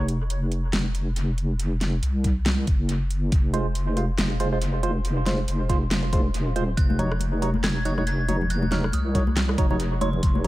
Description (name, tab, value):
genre	deep dubstep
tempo	139 BPM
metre	4/4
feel	swing 58% on 16ths, half-time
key	F phrygian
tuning	A4 = 442 Hz
part	deep soft wobble bass	bass	0.0-10.5 s	F1 to C2	-24 LUFS	equal	chorus
part	dubstep drum kit	drums	0.1-10.5 s	handclaps, hi-hat, rim click, snare drum	-30 LUFS	equal	dub echo
part	electronic kick drum	drums	2.2-10.3 s	none	-22 LUFS	equal	none
part	percussive organ stab	stabs	3.5-10.5 s	Gb3 to Db5	-29 LUFS	right 2 dB	chorus, dub echo
part	dark detuned synth bell	melody	6.8-10.5 s	C6 to Ab6	-34 LUFS	right 1 dB	chorus, dub echo
part	congas	percussion	6.9-10.5 s	none	-30 LUFS	left 3 dB	dub echo
room	digital ambience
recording	echo-heavy mix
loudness	-21 LUFS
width	side -17 dB against mid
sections	0.0-10.5 A section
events	none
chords	0.0 Fm; 6.8 Ebm7/F